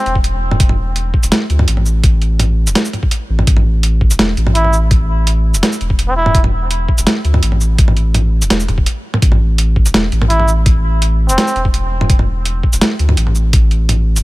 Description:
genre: half-time drum and bass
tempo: 167 BPM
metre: 4/4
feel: half-time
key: A minor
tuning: A4 = 439 Hz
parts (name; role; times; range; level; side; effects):
- trumpet with cup mute; melody; 0.0-0.2, 4.6-6.4, 10.3-11.6 s; C4 to E4; -20 LUFS; right 1 dB; digital delay
- saturated sub bass; bass; 0.1-14.2 s; E1 to D2; -14 LUFS; equal; none
- boom bap sampler-style drum kit; drums; 0.1-14.2 s; hi-hat, shaker, snare drum, toms; -16 LUFS; right 1 dB; overdrive
- electronic kick drum; drums; 0.2-13.6 s; none; -12 LUFS; equal; overdrive
room: little or no reverb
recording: none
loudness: -11 LUFS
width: side -19 dB against mid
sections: 0.0-14.2 A section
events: break 8.9-9.2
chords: 0.0 A5

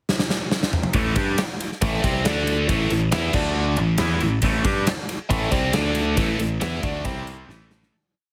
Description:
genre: hard rock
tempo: 138 BPM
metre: 4/4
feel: straight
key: A minor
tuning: A4 = 440 Hz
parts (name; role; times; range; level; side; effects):
- gated 80s drum kit; drums; 0.1-7.9 s; crash cymbal, kick drum, ride cymbal, snare drum, toms; -26 LUFS; equal; none
- overdriven electric guitar; riff; 0.9-7.9 s; A2 to G4; -26 LUFS; equal; phaser
- modern bright fingered electric bass; bass; 0.9-7.9 s; A1 to G2; -28 LUFS; equal; none
- scooped high-gain guitar; riff; 1.0-7.9 s; A2 to G4; -30 LUFS; equal; distortion
room: little or no reverb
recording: heavily compressed radio sound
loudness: -22 LUFS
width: mono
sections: 0.0-0.9 pickup bar; 0.9-7.9 riff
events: drum fill 0.1-0.9, 7.5-7.9; fade-out 6.2-7.9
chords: 0.0 N.C.; 0.9 Am; 2.3 D5; 2.7 A5; 3.4 D5; 3.8 Am; 5.7 D5; 6.2 A5; 7.0 C5; 7.5 A5

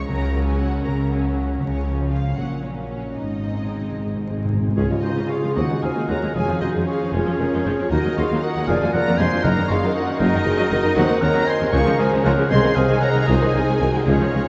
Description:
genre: classical, dramatic, fast romantic movement for symphony orchestra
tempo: 77 BPM (dotted quarters)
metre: 6/8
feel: rubato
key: Db major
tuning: A4 = 440 Hz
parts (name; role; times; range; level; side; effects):
- warm studio violin section; melody; 0.0-14.5 s; Db5 to Db6; -32 LUFS; equal; none
- rich studio violin section; second line; 0.0-14.5 s; Bb3 to Bb4; -32 LUFS; equal; none
- rich chamber viola section; accompaniment; 0.0-14.4 s; C3 to Db4; -30 LUFS; equal; none
- concert harp; arpeggios; 0.0-14.5 s; F2 to Gb5; -29 LUFS; equal; none
- clear symphonic double bass section; bass; 0.1-14.4 s; F1 to Eb2; -28 LUFS; equal; none
- rich symphonic cello section; bass; 0.1-14.4 s; C2 to Db3; -30 LUFS; equal; none
- timpani; percussion; 0.1-4.8 s; Ab2 to Db3; -31 LUFS; equal; none
- clear clarinet; second line; 4.8-14.5 s; Db4 to Db5; -32 LUFS; equal; none
- clear oboe; second line; 4.8-14.5 s; Ab4 to Ab5; -33 LUFS; equal; none
- mellow hollow silver concert flute; second line; 4.8-14.5 s; F4 to F5; -29 LUFS; equal; none
- mellow French horn section; sustained chords; 4.8-14.5 s; Eb4 to Bb4; -28 LUFS; equal; none
- warm tuba; bass; 4.8-14.4 s; F1 to Eb2; -28 LUFS; equal; none
- tam-tam; percussion; 4.8-6.8 s; none; -35 LUFS; equal; none
room: wet huge ambient reverb, RT60 8.4 s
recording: in a vast, echoing space, vinyl crackle, nothing above 8.0 kHz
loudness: -20 LUFS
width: mono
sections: 0.0-4.8 A section; 4.8-14.5 B section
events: timpani fill 3.2-4.8; band accent 4.8-5.3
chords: 0.1 Gb5/Db; 1.6 Db; 2.4 Gb/Bb; 3.2 Ab; 4.8 Db; 5.6 Ab7/Eb; 6.3 Db/F; 7.9 Ebm; 8.7 Bb7/F; 9.4 Ebm/Gb; 11.0 Cdim/Eb; 11.7 Db; 12.5 Ab/C

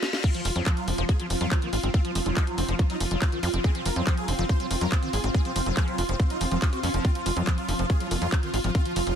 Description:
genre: psychedelic trance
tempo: 141 BPM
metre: 4/4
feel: straight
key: unclear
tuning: A4 = 441 Hz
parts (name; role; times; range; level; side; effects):
- swarming drone; sustained chords; 0.0-9.2 s; F4; -33 LUFS; right 2 dB; built-in reverb, phaser, sidechain pumping
- garage drum kit; drums; 0.0-9.2 s; crash cymbal, handclaps, hi-hat, snare drum; -32 LUFS; left 1 dB; none
- reverse cymbal and zap; sound effects; 0.0-0.2, 3.4-3.5 s; none; -36 LUFS; left 5 dB; none
- dense compressed supersaw; melody; 0.2-9.1 s; F3 to C5; -33 LUFS; equal; phaser, sidechain pumping, ping-pong delay
- liquid acid bass; riff; 0.2-9.2 s; Eb3 to Gb4; -34 LUFS; moving between left 4 dB and right 3 dB; phaser, auto-pan, cassette tape, sidechain pumping, ping-pong delay
- electronic kick drum; drums; 0.2-8.8 s; none; -23 LUFS; equal; none
- granular cloud pad; texture; 0.8-9.2 s; C4 to F6; -36 LUFS; right 2 dB; built-in reverb, sidechain pumping
- tight sequencer bass; bass; 0.5-9.1 s; F1 to F2; -27 LUFS; equal; none
- formant-sweep wobble bass; second line; 0.6-2.4, 7.4-8.3 s; Bb3 to Eb4; -44 LUFS; left 4 dB; none
room: digital ambience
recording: dense, heavily limited modern master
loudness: -23 LUFS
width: side -8 dB against mid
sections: 0.2-9.2 A section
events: break 0.0; drum fill 0.0; reverse cymbal 0.0; drop 0.2-9.2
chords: 0.2 F5

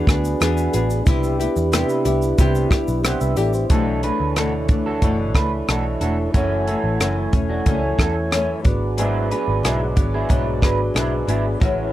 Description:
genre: indie pop, bedroom pop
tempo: 91 BPM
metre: 4/4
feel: straight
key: B dorian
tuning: A4 = 440 Hz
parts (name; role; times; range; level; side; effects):
- mellow tonewheel organ; accompaniment; 0.0-11.9 s; D4 to G#5; -24 LUFS; right 3 dB; slow rotary speaker, cassette tape
- nylon-string guitar; accompaniment; 0.0-11.9 s; F#2 to G#4; -24 LUFS; left 4 dB; wide subtle chorus, vibrato effect
- vintage muted picked electric bass; bass; 0.1-11.9 s; E1 to E2; -23 LUFS; equal; none
- compact cocktail drum kit; drums; 0.1-11.8 s; hi-hat, kick drum, rim click, shaker; -19 LUFS; equal; none
- tube shaker; percussion; 0.2-3.7 s; none; -42 LUFS; right 6 dB; none
- electric guitar through a small old amp; second line; 3.7-11.9 s; C#4 to B4; -27 LUFS; right 4 dB; analog chorus, tape echo
room: light reverb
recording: cassette tape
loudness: -17 LUFS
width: side -14 dB against mid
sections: 0.0-3.7 A section; 3.7-11.9 B section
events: none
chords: 0.0 E7; 1.1 Cmaj7; 3.7 Bm11; 6.3 F#m7; 8.7 E9/G#

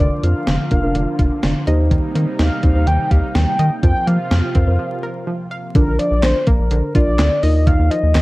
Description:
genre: synth-pop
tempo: 125 BPM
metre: 4/4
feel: straight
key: Bb major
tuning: A4 = 439 Hz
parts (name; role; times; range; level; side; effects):
- mellow horn-like synth lead; melody; 0.0-8.2 s; Bb4 to G5; -22 LUFS; left 1 dB; chorus, tape echo
- muted felt-like synth keys; accompaniment; 0.0-8.2 s; D4 to Bb5; -24 LUFS; right 1 dB; chorus
- lush unison pad; sustained chords; 0.0-5.7 s; C3 to F4; -27 LUFS; right 1 dB; chorus, phaser
- analog pluck; arpeggios; 0.0-8.2 s; D3 to F5; -25 LUFS; right 1 dB; chorus
- rubbery square bass; bass; 0.0-8.2 s; F1 to F3; -16 LUFS; equal; none
- gated 80s digital drum machine; drums; 0.2-8.2 s; handclaps, hi-hat, kick drum, snare drum; -18 LUFS; equal; gated reverb, gated reverb snare, vintage 12-bit sampler grit
room: light reverb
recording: dark, warm production, vinyl crackle, lossy compression artefacts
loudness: -14 LUFS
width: side -20 dB against mid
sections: 0.0-5.8 A section; 5.8-8.2 B section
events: synth keys fill 1.2-1.9; break 4.8-5.8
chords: 0.0 Bb/F; 1.7 Eb6; 3.8 Fsus4; 5.8 Bb; 7.4 Ebsus2

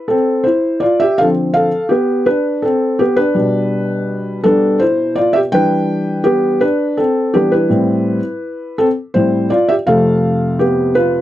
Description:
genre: pop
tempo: 55 BPM (dotted quarters)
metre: 6/8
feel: straight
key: A minor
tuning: A4 = 441 Hz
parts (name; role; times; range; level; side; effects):
- felt-muted upright piano; solo; 0.0-11.2 s; F2 to G5; -12 LUFS; equal; none
room: light reverb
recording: dry, close 1970s-style studio recording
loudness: -12 LUFS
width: side -13 dB against mid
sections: 0.0-11.2 A section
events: felt piano solo 0.0-11.2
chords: 0.0 Am7; 1.2 Dm7; 3.4 G; 5.5 Em7; 7.7 Am7; 9.9 F

